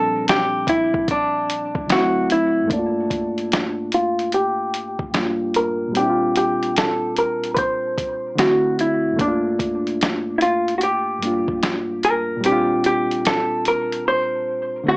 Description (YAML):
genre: lo-fi hip hop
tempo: 74 BPM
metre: 4/4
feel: swing 65% on 16ths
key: G dorian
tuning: A4 = 440 Hz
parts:
  - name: hollow-body jazz guitar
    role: melody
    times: 0.0-15.0 s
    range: D4 to C5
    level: -20 LUFS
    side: equal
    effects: low-pass filter
  - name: overdriven reed electric piano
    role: accompaniment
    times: 0.0-15.0 s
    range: D2 to F#4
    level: -23 LUFS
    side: equal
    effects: cassette tape, low-pass filter
  - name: lo-fi sampler-style drum kit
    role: drums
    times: 0.3-14.0 s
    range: hi-hat, kick drum, snare drum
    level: -23 LUFS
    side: equal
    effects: none
room: moderate studio reverb, RT60 0.5 s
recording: cassette tape, small speaker sound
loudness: -18 LUFS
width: side -25 dB against mid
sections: 0.0-2.7 A section; 2.7-15.0 B section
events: filter sweep 2.7-15.0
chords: 0.0 Bb69; 1.9 D7; 2.7 Gm9; 5.9 Bb69; 8.4 D7; 9.2 Gm9; 12.4 Bb69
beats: 0.27 1.08 1.89 | 2.70 3.51 4.32 5.13 | 5.95 6.75 7.57 8.38 | 9.19 10.00 10.81 11.62 | 12.43 13.24 14.05 14.86